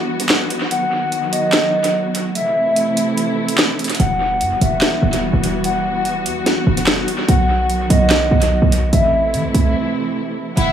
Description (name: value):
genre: hip hop, drill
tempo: 146 BPM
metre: 4/4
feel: half-time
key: E harmonic minor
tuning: A4 = 441 Hz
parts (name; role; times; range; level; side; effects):
- muted studio string section; sustained chords; 0.0-10.7 s; C3 to F#5; -21 LUFS; right 1 dB; none
- drill drum kit; drums; 0.2-10.7 s; handclaps, hi-hat, snare drum; -20 LUFS; equal; dub echo
- hollow clarinet-like synth lead; second line; 0.7-10.7 s; D#5 to F#5; -20 LUFS; equal; chorus, dub echo
- short 808-style bass; bass; 4.0-10.7 s; E1 to E3; -17 LUFS; right 1 dB; none
- warm symphonic violin section; melody; 10.6-10.7 s; E4 to E5; -20 LUFS; right 1 dB; none
room: moderate spring reverb, RT60 2.2 s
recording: echo-heavy mix, studio reverb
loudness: -14 LUFS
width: side -9 dB against mid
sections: 0.0-10.6 A section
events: break 0.0-4.0, 9.8-10.6; kick muted 3.2-4.0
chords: 0.0 Emadd9; 0.7 B; 2.4 Am; 4.0 Emadd9; 7.3 B; 8.9 Am